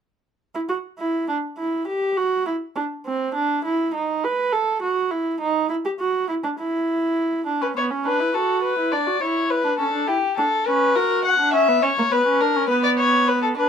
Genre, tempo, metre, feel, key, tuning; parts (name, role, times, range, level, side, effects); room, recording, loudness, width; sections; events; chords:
classical, baroque-style fugue for string quartet; 68 BPM (dotted quarters); 12/8; straight; A4 = 440 Hz
warm viola; accompaniment; 0.5-13.7 s; A#3 to B4; -22 LUFS; right 3 dB
dark violin; second line; 7.6-13.7 s; G4 to F#5; -19 LUFS; left 4 dB
light reverb; -19 LUFS; side -7 dB against mid
0.4-13.7 A section
0.4 N.C.; 7.5 Bm; 9.2 C#m; 11.0 F#; 12.7 N.C.